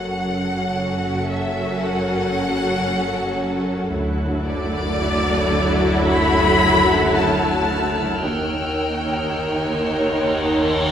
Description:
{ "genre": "cinematic, suspense film score", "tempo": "54-57 BPM", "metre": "4/4", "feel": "straight", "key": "F# minor", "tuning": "A4 = 440 Hz", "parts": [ { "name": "rich studio violin section", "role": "melody", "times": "0.0-10.9 s", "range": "D5 to B5", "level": "-23 LUFS", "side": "left 2 dB", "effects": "none" }, { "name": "rich symphonic violin section", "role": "second line", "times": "0.0-10.9 s", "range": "F#4 to C#5", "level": "-25 LUFS", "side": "left 1 dB", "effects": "none" }, { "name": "rich symphonic viola section", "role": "accompaniment", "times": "0.0-10.9 s", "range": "D#3 to E4", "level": "-23 LUFS", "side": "equal", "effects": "none" }, { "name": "clear symphonic double bass section", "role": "bass", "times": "0.0-10.9 s", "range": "F#1 to D#2", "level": "-28 LUFS", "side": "right 1 dB", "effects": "none" }, { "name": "warm symphonic cello section", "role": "bass", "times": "0.0-10.9 s", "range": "D2 to F#2", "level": "-27 LUFS", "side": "right 2 dB", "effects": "none" }, { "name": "organ-like drone", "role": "drone", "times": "0.0-10.9 s", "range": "F#1", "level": "-30 LUFS", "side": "equal", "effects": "ensemble chorus, built-in reverb, phaser" }, { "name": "rich symphonic violin section", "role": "texture", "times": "3.9-10.9 s", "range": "E6 to F#6", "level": "-31 LUFS", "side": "equal", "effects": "none" }, { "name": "cymbal swell", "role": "sound effects", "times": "9.7-10.9 s", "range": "none", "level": "-29 LUFS", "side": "equal", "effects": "none" } ], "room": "wet recital hall reverb, RT60 1.5 s", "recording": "recorded in a church or concert hall", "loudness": "-18 LUFS", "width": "side -9 dB against mid", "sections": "0.0-10.9 A section", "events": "cymbal swell 9.7-10.9", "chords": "0.0 F#m; 3.9 Dadd9/F#; 8.3 D#7" }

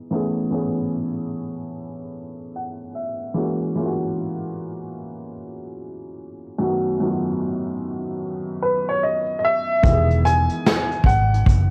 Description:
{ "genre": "lo-fi hip hop", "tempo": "74 BPM", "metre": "4/4", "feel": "swing 64% on 16ths", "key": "E major", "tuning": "A4 = 444 Hz", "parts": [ { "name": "felt-muted upright piano", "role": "accompaniment", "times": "0.0-11.7 s", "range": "F#2 to F#5", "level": "-28 LUFS", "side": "equal", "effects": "cassette tape" }, { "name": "warm upright piano", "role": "melody", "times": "8.6-11.7 s", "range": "B4 to G#5", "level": "-22 LUFS", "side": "equal", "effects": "none" }, { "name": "vintage muted fingered electric bass", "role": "bass", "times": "9.8-11.7 s", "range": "E1 to G#1", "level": "-21 LUFS", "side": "equal", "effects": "none" }, { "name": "vintage brush drum kit", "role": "drums", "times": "9.8-11.7 s", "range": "hi-hat, kick drum, snare drum", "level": "-21 LUFS", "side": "equal", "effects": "cassette tape" } ], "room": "light reverb, small room ambience", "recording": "home recording on cassette, vinyl crackle, low-pass filter", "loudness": "-22 LUFS", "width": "mono", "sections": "0.0-9.8 A section; 9.8-11.7 B section", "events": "filter sweep 0.0-9.8", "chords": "0.1 Amaj9/E; 3.3 F#9; 6.6 B7/F#; 9.8 Emaj7" }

